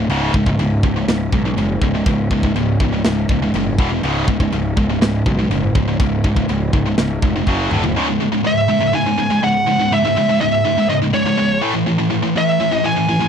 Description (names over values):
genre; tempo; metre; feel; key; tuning
heavy metal; 122 BPM; 4/4; straight; C# minor; A4 = 441 Hz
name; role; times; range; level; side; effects
heavy high-gain guitar; riff; 0.0-13.3 s; C#2 to A3; -17 LUFS; equal; distortion
fuzz picked electric bass; bass; 0.0-7.9 s; C#1 to B1; -21 LUFS; equal; overdrive
tight metal drum kit; drums; 0.1-8.0 s; china cymbal, kick drum, snare drum, toms; -19 LUFS; equal; none
high-gain lead guitar; melody; 8.5-13.3 s; C#5 to G#5; -17 LUFS; equal; distortion, slapback echo
room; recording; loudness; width
little or no reverb; dry, close 1970s-style studio recording; -14 LUFS; side -7 dB against mid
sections
0.0-8.0 A section; 8.0-13.3 B section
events
drum fill 7.5-8.0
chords
0.1 C#5; 3.8 E5; 4.0 C#5; 7.5 F#5; 7.7 D5; 8.0 C#m; 11.6 A5